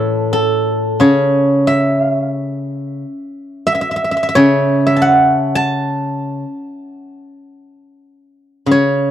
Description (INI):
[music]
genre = chinese traditional, Chinese solo plucked strings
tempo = 76-91 BPM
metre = 4/4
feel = rubato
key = unclear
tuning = A4 = 441 Hz
[part]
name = steel-string zither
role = solo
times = 0.0-9.1 s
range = A2 to A5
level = -13 LUFS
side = equal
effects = none
[sound]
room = little or no reverb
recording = dry, close 1970s-style studio recording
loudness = -12 LUFS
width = side -10 dB against mid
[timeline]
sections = 0.0-8.7 A section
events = none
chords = none